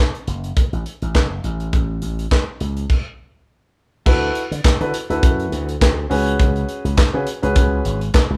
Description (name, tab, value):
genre	early-eighties boogie funk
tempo	103 BPM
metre	4/4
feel	swing 56% on 16ths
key	unclear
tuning	A4 = 440 Hz
part	tight funk drum kit	drums	0.1-8.3 s	crash cymbal, handclaps, hi-hat, kick drum, snare drum	-19 LUFS	equal	none
part	slap bass with an envelope filter	bass	0.3-8.4 s	F#1 to D3	-25 LUFS	equal	none
part	dark grand piano	accompaniment	4.1-8.0 s	C#4 to B4	-24 LUFS	equal	none
room	light reverb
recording	band playing live in one room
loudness	-19 LUFS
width	mono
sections	0.0-4.1 A section; 4.1-8.4 B section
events	stop 2.9-4.1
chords	0.0 F#m; 1.4 A; 4.1 D69; 6.1 C#7sus4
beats	0.57 1.15 | 1.73 2.31 2.90 3.48 | 4.06 4.65 5.23 5.81 | 6.39 6.98 7.56 8.14